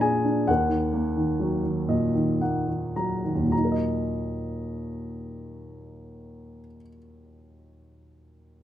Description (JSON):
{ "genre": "classical, lyrical solo piano", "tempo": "52-70 BPM", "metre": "3/4", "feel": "rubato", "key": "Eb minor", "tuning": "A4 = 440 Hz", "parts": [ { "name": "warm baby grand piano", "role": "solo", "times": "0.0-8.6 s", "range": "Eb2 to Bb5", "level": "-24 LUFS", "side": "equal", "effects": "none" } ], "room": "light reverb", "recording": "close, detailed microphones", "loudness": "-23 LUFS", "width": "side -11 dB against mid", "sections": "0.0-3.5 A section; 3.5-6.9 B section", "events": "slowing down 0.0-3.5; grand piano fill 1.4-3.5", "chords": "0.5 Ebm" }